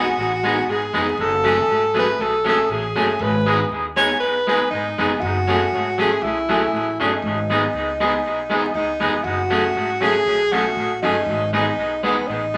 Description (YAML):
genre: ska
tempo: 119 BPM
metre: 4/4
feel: swing 55% on 8ths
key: F# dorian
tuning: A4 = 440 Hz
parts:
  - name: breathy tenor saxophone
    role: melody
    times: 0.0-12.6 s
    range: B3 to C#5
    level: -23 LUFS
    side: equal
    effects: none
  - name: electric guitar at the edge of break-up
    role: accompaniment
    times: 0.0-12.6 s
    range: F#3 to G#4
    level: -23 LUFS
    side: equal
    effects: tape echo
  - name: upright bass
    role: bass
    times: 0.0-12.6 s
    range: E#1 to D#2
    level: -31 LUFS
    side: equal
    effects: none
room: wet studio reverb, RT60 0.6 s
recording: vinyl crackle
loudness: -20 LUFS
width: mono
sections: 0.0-9.2 A section; 9.2-12.6 A section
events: none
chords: 0.0 G#m; 1.2 F#madd9; 3.2 G#m; 5.2 F#madd9; 7.2 G#m; 9.2 F#madd9; 11.3 G#m